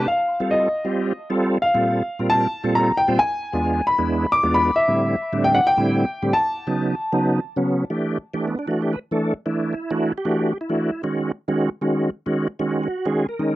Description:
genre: jazz.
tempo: 268 BPM (eighths).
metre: 7/8.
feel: straight.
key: unclear.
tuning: A4 = 439 Hz.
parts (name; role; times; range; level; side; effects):
warm grand piano; melody; 0.0-7.6 s; Eb5 to D6; -20 LUFS; left 1 dB; none.
bright tonewheel organ; accompaniment; 0.0-13.6 s; E2 to C5; -20 LUFS; right 1 dB; slow rotary speaker, overdrive, chorus vibrato.
room: light reverb.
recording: dry, close 1970s-style studio recording.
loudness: -19 LUFS.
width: side -16 dB against mid.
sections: 0.0-7.9 A section; 7.9-13.6 B section.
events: none.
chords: 0.1 F9; 1.6 Bbsus2; 3.2 E7b9; 4.8 Am7; 6.3 B7; 7.9 Em9; 11.0 D#m7.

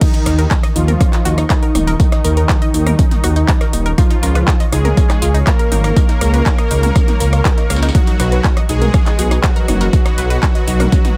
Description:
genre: melodic techno.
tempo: 121 BPM.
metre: 4/4.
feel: straight.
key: Eb minor.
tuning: A4 = 440 Hz.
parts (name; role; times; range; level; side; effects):
soft supersaw; melody; 0.0-11.2 s; Eb3 to Bb4; -23 LUFS; equal; sidechain pumping, digital delay.
dark analog pad; sustained chords; 0.0-11.2 s; Eb4 to Db6; -32 LUFS; equal; chorus, sidechain pumping.
unison pluck; arpeggios; 0.0-11.2 s; Db4 to F5; -26 LUFS; equal; sidechain pumping, tape echo.
dusty soul sampler-style drum kit; drums; 0.0-11.2 s; hi-hat, snare drum, tambourine; -34 LUFS; equal; sidechain pumping on perc, high-pass filter on perc, sidechain pumping on hats, high-pass filter on hats, high-pass filter on snare.
electronic kick drum; drums; 0.0-11.0 s; none; -16 LUFS; equal; overdrive.
techno drum kit; drums; 0.0-11.1 s; crash cymbal, handclaps, hi-hat, rim click, toms; -25 LUFS; equal; sidechain pumping on hats, sidechain pumping on toms, sidechain pumping on cymbals.
dark detuned saw bass; bass; 0.3-10.9 s; Eb1 to Eb2; -17 LUFS; equal; sidechain pumping.
room: little or no reverb.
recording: none.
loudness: -14 LUFS.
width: mono.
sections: 0.0-11.2 A section.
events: drop 0.0-11.2.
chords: 0.0 Eb7(no3); 4.0 Db; 7.9 Badd9.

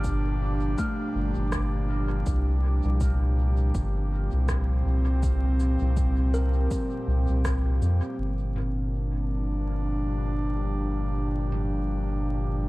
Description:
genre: ambient dub.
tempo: 81 BPM.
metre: 4/4.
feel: swing 58% on 16ths.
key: G minor.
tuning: A4 = 441 Hz.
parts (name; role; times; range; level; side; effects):
airy breathy pad; sustained chords; 0.0-12.7 s; Bb2 to G4; -30 LUFS; equal; chorus.
kalimba; arpeggios; 0.0-9.9 s; A3 to F6; -38 LUFS; left 2 dB; dub echo.
round analog bass; bass; 0.0-12.7 s; G1 to F2; -25 LUFS; equal; none.
electronic kick drum; drums; 0.0-7.6 s; none; -31 LUFS; equal; overdrive.
organic electronic drum kit; drums; 0.0-11.7 s; cabasa, rim click, toms; -39 LUFS; equal; low-pass filter on perc, low-pass filter on snare, low-pass filter on toms, low-pass filter on room, dub echo.
room: little or no reverb.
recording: echo-heavy mix, vinyl crackle.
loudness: -24 LUFS.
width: side -19 dB against mid.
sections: 0.0-8.2 A section; 8.2-12.7 B section.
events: filter sweep on drum 8.2-12.7.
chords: 0.0 Gm7; 2.3 C7sus4; 8.2 Gm7.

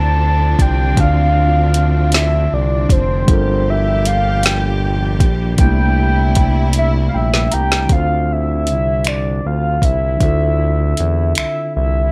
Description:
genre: slow six-eight R&B.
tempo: 52 BPM (dotted quarters).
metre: 6/8.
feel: straight.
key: unclear.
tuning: A4 = 440 Hz.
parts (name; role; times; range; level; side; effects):
soft octave-layered synth lead; melody; 0.0-12.1 s; C5 to A5; -22 LUFS; equal; chorus.
mellow tine electric piano; accompaniment; 0.0-12.1 s; C3 to Bb5; -24 LUFS; equal; none.
warm studio string section; sustained chords; 0.0-7.9 s; Bb2 to G4; -28 LUFS; equal; none.
smooth synth bass; bass; 0.0-12.1 s; F1 to E2; -19 LUFS; equal; none.
smooth R&B drum kit; drums; 0.6-11.5 s; finger snaps, hi-hat, kick drum, snare drum; -17 LUFS; equal; none.
room: light reverb.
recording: none.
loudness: -15 LUFS.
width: mono.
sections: 0.0-7.9 A section; 7.9-12.1 B section.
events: drum fill 6.7-7.9; tine electric piano fill 6.7-7.9.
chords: 0.0 Dm9; 3.3 Gm9; 5.6 C13; 7.9 Dm9.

